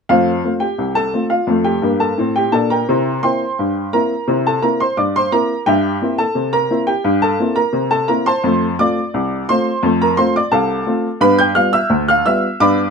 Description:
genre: ragtime piano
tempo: 86 BPM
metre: 2/4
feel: straight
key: F major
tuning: A4 = 444 Hz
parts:
  - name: clear upright piano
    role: solo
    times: 0.1-12.9 s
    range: C2 to G6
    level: -14 LUFS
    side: equal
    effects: none
room: light reverb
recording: close, detailed microphones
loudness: -14 LUFS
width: side -5 dB against mid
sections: 0.1-12.9 A section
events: none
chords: 0.1 F; 2.9 C7; 5.7 C7/G; 8.4 F; 11.2 G7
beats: | 0.09 0.79 | 1.49 2.18 | 2.88 3.57 | 4.27 4.96 | 5.66 6.35 | 7.05 7.74 | 8.44 9.13 | 9.82 10.52 | 11.21 11.91 | 12.60

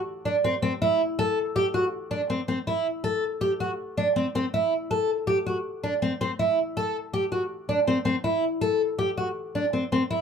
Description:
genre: progressive instrumental, progressive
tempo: 161 BPM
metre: 5/4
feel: straight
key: A dorian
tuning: A4 = 439 Hz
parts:
  - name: fingerpicked twelve-string acoustic guitar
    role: solo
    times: 0.3-10.2 s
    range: C4 to A4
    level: -24 LUFS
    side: equal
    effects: none
room: moderate small room reverb, RT60 0.5 s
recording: minimal, uncompressed stereo recording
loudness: -24 LUFS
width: side -7 dB against mid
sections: 0.0-1.9 A section; 1.9-10.2 B section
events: none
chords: none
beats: | 0.07 0.44 0.81 1.18 1.55 | 1.92 2.29 2.67 3.04 3.41 | 3.78 4.15 4.53 4.90 5.27 | 5.64 6.01 6.39 6.76 7.13 | 7.50 7.88 8.25 8.62 8.99 | 9.36 9.73 10.11

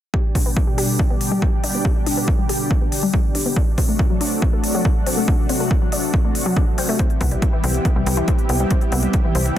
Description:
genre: uplifting trance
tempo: 140 BPM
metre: 4/4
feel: straight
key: G major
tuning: A4 = 439 Hz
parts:
  - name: analog string pad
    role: sustained chords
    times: 0.1-9.6 s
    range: B2 to G4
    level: -24 LUFS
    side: equal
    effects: ensemble chorus, sidechain pumping
  - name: analog pluck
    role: arpeggios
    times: 0.1-9.4 s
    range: E3 to G4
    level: -25 LUFS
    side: left 3 dB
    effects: chorus, phaser, vintage 12-bit sampler grit, sidechain pumping, tape echo
  - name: electronic kick drum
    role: drums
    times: 0.1-9.2 s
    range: none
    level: -18 LUFS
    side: equal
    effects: none
  - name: electronic hi-hat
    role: drums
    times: 0.4-9.5 s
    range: none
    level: -27 LUFS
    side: left 1 dB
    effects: overdrive, sidechain pumping on hats
  - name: tight sequencer bass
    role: bass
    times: 7.2-9.5 s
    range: C2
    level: -20 LUFS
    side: equal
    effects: sidechain pumping
room: light reverb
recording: dense, heavily limited modern master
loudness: -16 LUFS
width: side -12 dB against mid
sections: 0.1-9.6 A section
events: none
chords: 0.1 G; 3.6 D7; 7.0 Cmaj7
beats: | 0.14 0.56 0.99 1.42 | 1.85 2.28 2.71 3.14 | 3.56 3.99 4.42 4.85 | 5.28 5.71 6.14 6.57 | 6.99 7.42 7.85 8.28 | 8.71 9.14 9.56

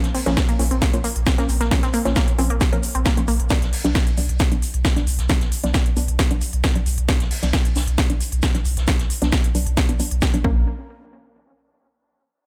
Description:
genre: driving peak-time techno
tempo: 134 BPM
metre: 4/4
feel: straight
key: unclear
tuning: A4 = 440 Hz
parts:
  - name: filtered dub chord stab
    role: stabs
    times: 0.0-10.6 s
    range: F3 to D4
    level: -29 LUFS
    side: equal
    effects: chorus, sidechain pumping, dub echo
  - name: warm sub bass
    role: bass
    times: 0.0-10.7 s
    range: Bb1 to B1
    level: -25 LUFS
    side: equal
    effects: sidechain pumping, low-pass filter
  - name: techno drum kit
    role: drums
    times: 0.0-10.4 s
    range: hi-hat, snare drum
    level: -27 LUFS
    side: equal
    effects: none
  - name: vintage drum kit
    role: drums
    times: 0.0-10.3 s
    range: hi-hat, shaker, snare drum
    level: -37 LUFS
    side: equal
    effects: high-pass filter on hats, high-pass filter on snare, high-pass filter on perc, high-pass filter on room
  - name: unison pluck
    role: riff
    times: 0.1-3.3, 10.4-10.7 s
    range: Bb3 to C4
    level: -29 LUFS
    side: equal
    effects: sidechain pumping, delay
  - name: electronic kick drum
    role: drums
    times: 0.4-10.5 s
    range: none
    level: -23 LUFS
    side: equal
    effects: none
room: little or no reverb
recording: none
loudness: -20 LUFS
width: mono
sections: 0.0-10.7 A section; 10.7-12.5 B section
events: filter sweep on synth stab 0.0-10.7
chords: 0.0 Bbm; 3.5 Bm; 10.4 Bbm; 10.7 N.C.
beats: 0.37 0.82 1.26 | 1.71 2.16 2.61 3.06 | 3.50 3.95 4.40 4.85 | 5.29 5.74 6.19 6.64 | 7.09 7.53 7.98 8.43 | 8.88 9.32 9.77 10.22

